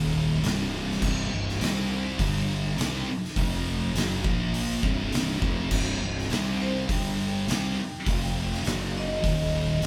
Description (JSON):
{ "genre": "stoner and doom metal", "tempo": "102 BPM", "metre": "4/4", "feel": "straight", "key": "unclear", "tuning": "A4 = 440 Hz", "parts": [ { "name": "thick fuzz guitar", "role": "riff", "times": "0.0-9.9 s", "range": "C2 to C4", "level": "-30 LUFS", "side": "equal", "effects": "distortion" }, { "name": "fuzz fingered electric bass", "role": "bass", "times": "0.0-9.9 s", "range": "C1 to C2", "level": "-34 LUFS", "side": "equal", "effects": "overdrive" }, { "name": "oversized low-tuned drum kit", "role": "drums", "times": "0.4-9.9 s", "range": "crash cymbal, hi-hat, kick drum, snare drum", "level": "-32 LUFS", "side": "equal", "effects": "none" }, { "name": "vibraphone with hard mallets", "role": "melody", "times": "6.6-9.9 s", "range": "C5 to G5", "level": "-37 LUFS", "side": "equal", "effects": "none" } ], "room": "light reverb", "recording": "band playing live in one room", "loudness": "-27 LUFS", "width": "mono", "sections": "0.0-5.7 A section; 5.7-9.9 B section", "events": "vibraphone solo 5.7-9.9", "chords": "0.4 C5; 2.2 G5; 2.8 C5; 3.4 F5; 4.0 F#5; 4.2 Bb5; 4.8 C5; 6.9 G5; 7.5 C5; 8.1 F5; 8.7 F#5; 9.2 Eb5" }